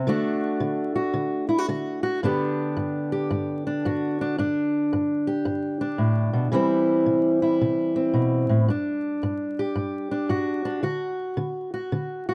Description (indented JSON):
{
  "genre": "blues",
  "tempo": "111 BPM",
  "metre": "4/4",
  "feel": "swing 65% on 8ths",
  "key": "G major",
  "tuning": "A4 = 440 Hz",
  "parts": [
    { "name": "fingerpicked steel-string acoustic guitar", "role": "solo", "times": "0.0-12.3 s", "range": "G2 to G4", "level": "-25 LUFS", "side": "equal", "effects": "none" }
  ],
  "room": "studio reverb",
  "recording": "dry, close 1970s-style studio recording, vinyl crackle",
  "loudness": "-25 LUFS",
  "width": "mono",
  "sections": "0.0-2.2 A section; 2.2-12.3 B section",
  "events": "none",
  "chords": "0.1 D; 2.2 G; 6.5 C; 8.7 G5; 10.8 D",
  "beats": "| 0.07 0.61 1.14 1.68 | 2.22 2.75 3.29 3.83 | 4.37 4.91 5.45 5.99 | 6.52 7.06 7.60 8.14 | 8.69 9.23 9.77 10.31 | 10.85 11.39 11.93"
}